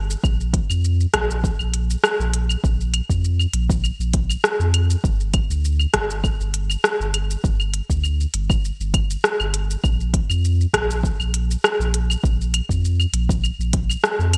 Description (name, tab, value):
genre	organic downtempo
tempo	100 BPM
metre	4/4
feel	straight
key	unclear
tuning	A4 = 441 Hz
part	warm sub bass	bass	0.0-14.4 s	G1 to F2	-23 LUFS	equal	tube saturation, sidechain pumping
part	organic electronic drum kit	drums	0.1-14.4 s	claves, hi-hat, rim click, shaker	-24 LUFS	equal	gated reverb
part	electronic kick drum	drums	0.2-13.9 s	none	-24 LUFS	equal	none
room	light reverb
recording	bright 1980s-style digital production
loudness	-21 LUFS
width	mono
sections	0.0-14.4 A section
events	none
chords	none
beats	| 0.24 0.84 1.44 2.04 | 2.64 3.24 3.84 4.44 | 5.04 5.64 6.24 6.84 | 7.44 8.04 8.64 9.24 | 9.84 10.44 11.04 11.64 | 12.24 12.84 13.44 14.04